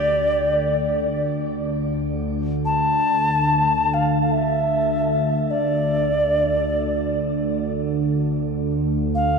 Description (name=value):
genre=world meditative, free-time meditation music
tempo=free time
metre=none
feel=none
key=unclear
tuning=A4 = 441 Hz
part: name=alto ocarina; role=melody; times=0.0-9.4 s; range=D5 to A5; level=-21 LUFS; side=equal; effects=shimmer reverb, tape echo
part: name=deep dark ambient pad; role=drone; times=0.0-9.4 s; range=D2 to D3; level=-22 LUFS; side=equal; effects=chorus, built-in reverb
part: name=koto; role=texture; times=0.0-9.0 s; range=G4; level=-40 LUFS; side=equal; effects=shimmer reverb
room=wet huge ambient reverb, RT60 4.6 s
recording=dark, warm production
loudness=-19 LUFS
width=side -5 dB against mid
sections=0.0-9.4 A section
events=none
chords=none